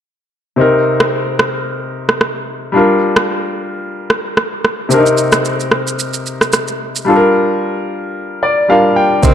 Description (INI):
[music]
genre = afrobeats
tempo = 111 BPM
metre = 4/4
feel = swing 55% on 16ths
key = C minor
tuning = A4 = 440 Hz
[part]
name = clear baby grand piano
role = accompaniment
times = 0.6-9.3 s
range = C3 to G5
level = -13 LUFS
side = left 2 dB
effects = none
[part]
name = afro-pop drum kit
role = drums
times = 1.0-9.3 s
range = kick drum, rim click, shaker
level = -15 LUFS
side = right 1 dB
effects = none
[part]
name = clear tenor saxophone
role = melody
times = 9.2-9.3 s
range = C4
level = -14 LUFS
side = right 4 dB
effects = none
[part]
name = congas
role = percussion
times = 9.2-9.3 s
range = none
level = -16 LUFS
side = right 6 dB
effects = none
[sound]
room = light reverb, small room ambience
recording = dark, warm production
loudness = -12 LUFS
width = side -9 dB against mid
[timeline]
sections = 0.6-9.2 A section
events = grand piano fill 8.2-9.2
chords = 0.6 Cm7; 2.7 Gm7; 4.9 Cm7; 7.1 Gm7